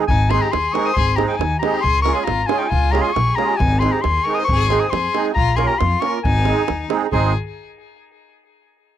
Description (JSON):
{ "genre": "balkan folk, Balkan wedding band", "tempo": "137 BPM", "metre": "2/4", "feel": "straight", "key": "Ab major", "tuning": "A4 = 441 Hz", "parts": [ { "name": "musette accordion", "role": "accompaniment", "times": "0.0-7.3 s", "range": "Ab3 to Bb4", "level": "-21 LUFS", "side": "right 8 dB", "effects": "none" }, { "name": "clear clarinet", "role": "melody", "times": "0.1-7.3 s", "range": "G5 to Eb6", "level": "-20 LUFS", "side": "left 3 dB", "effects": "none" }, { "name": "rich violin", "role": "second line", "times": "0.1-7.3 s", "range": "Eb4 to C5", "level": "-26 LUFS", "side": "left 8 dB", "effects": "tape echo" }, { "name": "upright bass", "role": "bass", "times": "0.1-7.3 s", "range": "Ab1 to F2", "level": "-20 LUFS", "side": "equal", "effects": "none" }, { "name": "davul", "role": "percussion", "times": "0.1-7.3 s", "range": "none", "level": "-23 LUFS", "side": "right 3 dB", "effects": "none" } ], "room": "little or no reverb", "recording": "dry, close 1970s-style studio recording", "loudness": "-16 LUFS", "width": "side -11 dB against mid", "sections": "0.1-7.1 A section", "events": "none", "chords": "0.1 Ab; 1.8 Db; 3.6 Ab; 5.4 Bbm; 6.2 Ab" }